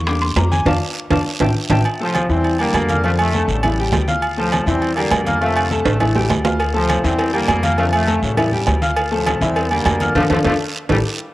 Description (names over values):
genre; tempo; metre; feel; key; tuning
latin, salsa; 202 BPM; 4/4; straight; unclear; A4 = 438 Hz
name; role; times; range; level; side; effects
bright upright piano; accompaniment; 0.0-11.0 s; E3 to F6; -21 LUFS; left 2 dB; cassette tape
upright bass; bass; 0.0-11.0 s; A1 to F2; -21 LUFS; equal; none
bongos and cowbell; percussion; 0.1-1.8, 6.6-11.0 s; none; -28 LUFS; left 4 dB; none
congas; percussion; 0.1-11.0 s; none; -26 LUFS; left 1 dB; none
guiro; percussion; 0.1-11.0 s; none; -30 LUFS; right 4 dB; none
timbales and agogo bells; percussion; 0.1-11.0 s; none; -21 LUFS; right 3 dB; none
bright trombone section; melody; 2.0-11.0 s; A2 to C4; -22 LUFS; equal; cassette tape
room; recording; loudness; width
moderate spring reverb, RT60 2.0 s, studio reverb; home recording on cassette; -15 LUFS; side -17 dB against mid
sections
0.0-1.9 A section; 1.9-11.3 B section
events
upright piano solo 0.0-1.9; band accent 0.7-1.9, 10.2-11.3; drum fill 1.0-1.9, 5.9-6.6, 10.5-11.3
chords
0.1 Em7b5; 0.7 F6; 1.3 A5; 1.9 Fmaj9; 2.4 Em7b5; 3.0 F6; 3.6 A7; 4.2 Dm7; 4.8 Em7b5; 5.4 F6; 6.0 A7; 6.6 Dm7; 7.2 Em7b5; 7.8 F6; 8.4 A7; 9.0 Dm7; 9.6 Em7b5; 10.2 F6; 10.7 A5